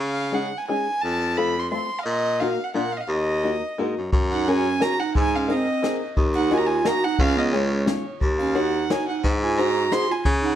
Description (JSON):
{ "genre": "musette waltz", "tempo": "176 BPM", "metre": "3/4", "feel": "straight", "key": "Eb minor, F# major from 4.1 s", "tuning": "A4 = 439 Hz", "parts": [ { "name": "warm violin", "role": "melody", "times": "0.0-10.6 s", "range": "C#5 to C6", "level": "-26 LUFS", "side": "right 2 dB", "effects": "slapback echo, plate reverb" }, { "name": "bright baritone saxophone", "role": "bass", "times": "0.0-10.6 s", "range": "C#2 to C#3", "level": "-24 LUFS", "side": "left 1 dB", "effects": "none" }, { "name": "open-back banjo", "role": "accompaniment", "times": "0.3-10.1 s", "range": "Ab3 to C#5", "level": "-26 LUFS", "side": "left 4 dB", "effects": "none" }, { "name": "jazz brush drum kit", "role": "drums", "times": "4.1-10.5 s", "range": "kick drum, ride cymbal, snare drum", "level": "-26 LUFS", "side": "left 1 dB", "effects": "none" }, { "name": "mellow clarinet", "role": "second line", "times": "4.3-10.6 s", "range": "G#3 to G#4", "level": "-25 LUFS", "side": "right 5 dB", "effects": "none" } ], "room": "light reverb", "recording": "dark, warm production", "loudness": "-20 LUFS", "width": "side -11 dB against mid", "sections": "0.0-4.1 A section; 4.1-10.6 B section", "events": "none", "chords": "0.0 Dbsus2; 1.0 F; 2.1 Ebm/Bb; 2.7 Bb; 3.1 Ebm; 4.1 F#add9; 5.2 G#add9; 6.2 D#madd9; 7.2 C#; 8.2 D#m7; 9.2 G#7", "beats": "0.34 0.69 | 1.03 1.38 1.72 | 2.06 2.40 2.74 | 3.08 3.43 3.78 | 4.13 4.47 4.82 | 5.16 5.50 5.84 | 6.18 6.51 6.85 | 7.19 7.53 7.88 | 8.22 8.56 8.91 | 9.25 9.58 9.92 | 10.26" }